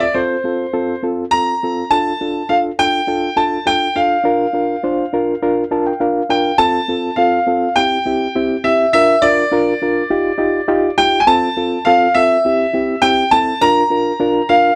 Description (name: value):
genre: soul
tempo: 102 BPM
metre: 4/4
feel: straight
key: F major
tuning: A4 = 440 Hz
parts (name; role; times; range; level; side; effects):
- bright concert grand piano; melody; 0.0-14.8 s; C5 to Bb5; -17 LUFS; equal; none
- reed electric piano; accompaniment; 0.0-14.7 s; C4 to A5; -20 LUFS; equal; fast tremolo
room: moderate small room ambience, RT60 0.5 s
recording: none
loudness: -16 LUFS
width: mono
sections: 0.0-6.6 A section; 6.6-14.8 B section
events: reed electric piano fill 5.4-6.6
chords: 0.0 F; 1.9 Dm; 4.3 Bb; 6.6 F; 7.8 C; 8.9 Bb/D; 10.1 Ebadd9; 11.3 F; 12.4 C; 13.6 Bb/D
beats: 0.15 0.74 1.33 | 1.91 2.50 3.09 3.67 | 4.26 4.84 5.43 6.01 | 6.60 7.18 7.77 8.35 | 8.94 9.52 10.11 10.69 | 11.28 11.86 12.45 13.03 | 13.62 14.21